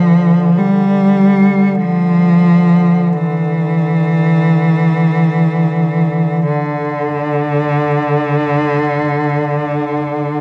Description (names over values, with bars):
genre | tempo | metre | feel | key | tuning
caucasian folk, Caucasian lament | free time | none | none | D minor | A4 = 440 Hz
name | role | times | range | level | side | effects
clear cello | melody | 0.0-10.4 s | D3 to G3 | -14 LUFS | equal | none
mellow duduk | drone | 0.0-10.4 s | D3 | -24 LUFS | equal | none
room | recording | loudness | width
wet church reverb, RT60 3.2 s | dark, warm production | -14 LUFS | mono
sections
0.0-10.4 A section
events
none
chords
none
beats
free time